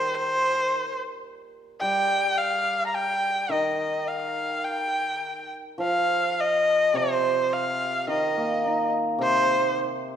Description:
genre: chinese traditional, Chinese chamber ensemble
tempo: 106 BPM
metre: 4/4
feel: rubato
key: unclear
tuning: A4 = 440 Hz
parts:
  - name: warm erhu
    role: melody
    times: 0.0-9.7 s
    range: C5 to Bb5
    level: -24 LUFS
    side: left 1 dB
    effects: none
  - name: hammered dulcimer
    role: accompaniment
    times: 0.0-10.2 s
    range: C3 to Eb4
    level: -28 LUFS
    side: right 2 dB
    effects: none
room: wet recital hall reverb, RT60 1.6 s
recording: none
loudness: -22 LUFS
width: side -9 dB against mid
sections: 0.0-5.8 A section; 5.8-10.2 B section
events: none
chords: none

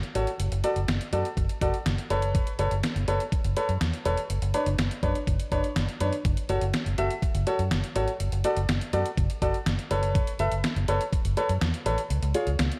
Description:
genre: synth-pop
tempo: 123 BPM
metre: 4/4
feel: straight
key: unclear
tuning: A4 = 445 Hz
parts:
  - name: detuned 8-bit digital drum machine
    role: drums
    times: 0.0-12.8 s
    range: hi-hat, kick drum, snare drum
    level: -32 LUFS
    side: equal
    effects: overdrive
  - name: clear grand piano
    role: accompaniment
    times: 0.2-12.5 s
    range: D4 to E5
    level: -31 LUFS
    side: equal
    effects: none
  - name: vintage muted fingered electric bass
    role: bass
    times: 0.2-12.7 s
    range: E1 to F#2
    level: -30 LUFS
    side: equal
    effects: none
room: light reverb, digital ambience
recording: none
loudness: -27 LUFS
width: mono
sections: 0.0-12.8 A section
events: none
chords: 0.4 D/F#; 2.1 Aadd9/F#; 4.3 Bmadd9/F#; 6.2 F#m; 8.2 D/F#; 9.9 Aadd9/F#; 12.1 C#

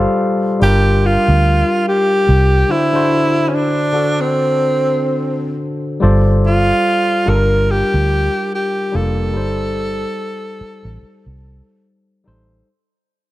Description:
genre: lush 1970s-style soul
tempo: 72 BPM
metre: 4/4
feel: swing 58% on 16ths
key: G minor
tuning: A4 = 440 Hz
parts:
  - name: barky tine electric piano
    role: accompaniment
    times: 0.0-12.7 s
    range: D3 to F5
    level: -19 LUFS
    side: left 2 dB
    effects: none
  - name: vintage muted fingered electric bass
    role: bass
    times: 0.0-12.6 s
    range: F1 to D2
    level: -15 LUFS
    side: equal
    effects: none
  - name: breathy tenor saxophone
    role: melody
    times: 0.6-11.9 s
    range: C4 to Bb4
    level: -16 LUFS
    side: right 1 dB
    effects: none
room: moderate echo chamber reverb, RT60 2.4 s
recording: dark, warm production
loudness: -13 LUFS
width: side -16 dB against mid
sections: 0.0-6.0 A section; 6.0-12.7 B section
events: break 2.7-6.0; fade-out 6.0-12.7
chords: 0.0 G9sus4; 0.6 Gm7; 2.7 D7; 6.0 G9sus4; 7.3 Gm7; 9.3 Am7b5/G

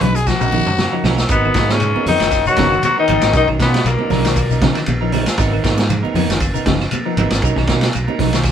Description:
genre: afrobeat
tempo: 117 BPM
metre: 4/4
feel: swing 55% on 16ths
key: G# dorian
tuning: A4 = 443 Hz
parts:
  - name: growling trumpet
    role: melody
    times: 0.0-1.3 s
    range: F#4 to B4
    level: -20 LUFS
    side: left 2 dB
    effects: none
  - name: semi-hollow electric guitar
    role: arpeggios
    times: 0.0-8.5 s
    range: C#3 to F#3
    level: -24 LUFS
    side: left 6 dB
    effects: spring reverb
  - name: clean electric guitar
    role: stabs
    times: 0.0-8.4 s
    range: F#3 to A#4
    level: -24 LUFS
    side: right 7 dB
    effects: none
  - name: fingered electric bass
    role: bass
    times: 0.0-8.5 s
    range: F#1 to B2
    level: -20 LUFS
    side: equal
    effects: none
  - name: vintage drum kit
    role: drums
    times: 0.0-8.5 s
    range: hi-hat, kick drum, ride cymbal, snare drum, toms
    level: -20 LUFS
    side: equal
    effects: none
  - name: congas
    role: percussion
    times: 0.0-8.5 s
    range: none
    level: -23 LUFS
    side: right 4 dB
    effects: none
  - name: shekere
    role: percussion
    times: 0.0-8.5 s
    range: none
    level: -28 LUFS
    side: left 8 dB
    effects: none
  - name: claves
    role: percussion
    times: 0.3-8.5 s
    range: none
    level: -34 LUFS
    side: right 10 dB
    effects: none
  - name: growling tenor saxophone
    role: melody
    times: 1.3-4.6 s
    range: A#3 to F#4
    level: -17 LUFS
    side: left 5 dB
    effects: none
  - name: mellow trombone section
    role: second line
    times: 1.3-4.6 s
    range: A#2 to F#3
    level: -25 LUFS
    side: left 2 dB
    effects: none
  - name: warm trombone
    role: second line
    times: 1.3-4.6 s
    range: A#2 to F#3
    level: -26 LUFS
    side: right 3 dB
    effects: none
room: moderate studio reverb, RT60 0.5 s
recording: band playing live in one room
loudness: -13 LUFS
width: side -9 dB against mid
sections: 0.0-1.3 A section; 1.3-8.5 B section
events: trumpet solo 0.0-1.3; drum fill 0.3-1.3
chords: 0.0 Bmaj9; 1.3 G#m9; 3.3 Bmaj9; 5.4 G#m9; 7.4 Bmaj9

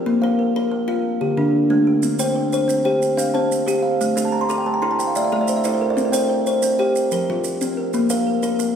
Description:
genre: southern african traditional, mbira-style interlocking cycle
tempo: 122 BPM (dotted quarters)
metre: 12/8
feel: straight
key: C mixolydian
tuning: A4 = 441 Hz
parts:
  - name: kalimba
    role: arpeggios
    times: 0.0-8.7 s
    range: D3 to F5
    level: -19 LUFS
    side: left 2 dB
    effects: none
  - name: kalimba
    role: arpeggios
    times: 0.0-8.8 s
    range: D3 to D6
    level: -22 LUFS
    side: right 4 dB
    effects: none
  - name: maracas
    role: percussion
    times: 2.0-8.8 s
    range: none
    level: -30 LUFS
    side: right 6 dB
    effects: none
room: wet recital hall reverb, RT60 1.5 s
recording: recorded in a church or concert hall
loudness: -17 LUFS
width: side -8 dB against mid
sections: 0.0-8.8 A section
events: kalimba fill 4.1-6.0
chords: 0.1 Bb5; 1.0 Dm; 2.0 C5; 4.0 A5; 6.0 C5; 7.0 F5; 7.9 Bb5

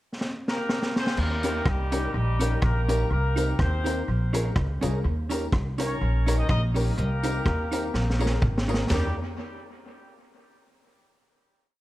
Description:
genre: ska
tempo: 124 BPM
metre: 4/4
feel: swing 55% on 8ths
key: Eb mixolydian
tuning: A4 = 440 Hz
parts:
  - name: vintage drum kit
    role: drums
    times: 0.2-9.0 s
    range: crash cymbal, hi-hat, kick drum, ride cymbal, rim click, snare drum, toms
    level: -28 LUFS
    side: equal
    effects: tape echo
  - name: clear horn section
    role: melody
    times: 0.5-9.2 s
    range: G3 to Eb5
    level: -32 LUFS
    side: left 1 dB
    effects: tape echo
  - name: upright bass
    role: bass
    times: 1.2-9.2 s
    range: Ab1 to Eb2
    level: -25 LUFS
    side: equal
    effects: none
  - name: vintage hollow-body jazz guitar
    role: accompaniment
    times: 1.4-9.1 s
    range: Db4 to Bb4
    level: -34 LUFS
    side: right 5 dB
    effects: none
  - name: honky-tonk upright piano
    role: stabs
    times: 1.4-9.1 s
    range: C4 to Bb4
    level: -33 LUFS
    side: left 3 dB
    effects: tape echo
  - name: tambourine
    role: percussion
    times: 1.4-9.2 s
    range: none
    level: -46 LUFS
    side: left 10 dB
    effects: none
room: light reverb, studio reverb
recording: none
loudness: -23 LUFS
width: side -16 dB against mid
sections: 0.0-1.2 pickup bar; 1.2-8.9 head; 8.9-10.8 final chord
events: drum fill 0.2-1.2, 7.9-8.9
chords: 0.0 Gmadd11; 1.2 Eb7; 3.1 Cm7; 4.1 Bbm7; 5.0 Eb7; 7.0 Cm7; 7.9 Bbm7; 8.9 Eb7

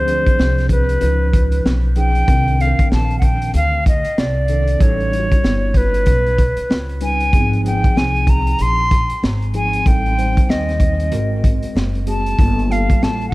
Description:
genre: hip hop, jazz-hop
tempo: 95 BPM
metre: 4/4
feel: swing 62% on 16ths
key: unclear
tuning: A4 = 438 Hz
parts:
  - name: hollow silver concert flute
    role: melody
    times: 0.0-13.3 s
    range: B4 to C6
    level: -20 LUFS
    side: equal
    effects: dub echo
  - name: mellow tine electric piano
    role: accompaniment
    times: 0.0-13.3 s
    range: Eb3 to C5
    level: -25 LUFS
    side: equal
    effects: medium stereo tremolo, dub echo
  - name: upright bass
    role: bass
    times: 0.0-13.3 s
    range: Gb1 to Eb2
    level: -18 LUFS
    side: equal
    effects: none
  - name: crunchy breakbeat drum kit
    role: drums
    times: 0.1-13.3 s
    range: hi-hat, kick drum, snare drum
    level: -17 LUFS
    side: equal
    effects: none
room: light reverb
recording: echo-heavy mix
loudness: -14 LUFS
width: side -20 dB against mid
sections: 0.0-13.3 A section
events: none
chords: 0.0 Dm7b5; 1.0 C#9; 2.3 Cm9; 4.8 A7#11; 7.3 Ab6; 9.9 Am7b5; 11.1 Ab9; 12.4 Gm9

